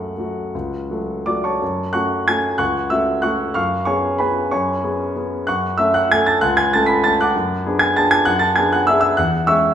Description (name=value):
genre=classical, piano waltz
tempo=153-213 BPM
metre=3/4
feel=rubato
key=F# minor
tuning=A4 = 439 Hz
part: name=warm concert grand piano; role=solo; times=0.0-9.7 s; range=C#2 to B6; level=-16 LUFS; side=equal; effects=none
room=wet recital hall reverb, RT60 1.4 s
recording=recorded in a church or concert hall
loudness=-16 LUFS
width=side -9 dB against mid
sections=0.0-1.6 A section; 1.6-9.7 A section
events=none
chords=0.0 F#m; 3.6 C#7/F#; 5.5 F#m; 7.3 G#m7b5/F#; 9.2 C#m/E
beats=0.16 | 0.54 0.89 1.26 | 1.61 1.94 2.27 | 2.60 2.91 3.23 | 3.56 3.87 4.19 | 4.51 4.82 5.15 | 5.46 5.78 6.10 | 6.42 6.72 7.03 | 7.33 7.64 7.95 | 8.26 8.56 8.87 | 9.17 9.46